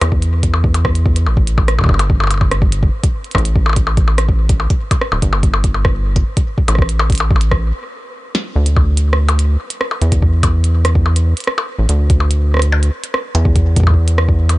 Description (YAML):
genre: IDM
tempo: 144 BPM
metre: 4/4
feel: straight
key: unclear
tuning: A4 = 439 Hz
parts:
  - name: rubbery square bass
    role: bass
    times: 0.0-14.6 s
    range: D1 to E2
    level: -14 LUFS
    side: equal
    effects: none
  - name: glitchy drum kit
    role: drums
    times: 0.0-14.6 s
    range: hi-hat, percussion blips, rim click, snare drum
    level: -20 LUFS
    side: left 1 dB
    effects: none
  - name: electronic kick drum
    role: drums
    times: 0.1-14.4 s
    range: none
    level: -15 LUFS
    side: equal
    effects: none
room: little or no reverb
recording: nothing above 10.4 kHz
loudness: -12 LUFS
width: side -19 dB against mid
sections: 0.0-8.6 A section; 8.6-14.6 B section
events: stop 7.7-8.6; drum fill 8.3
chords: none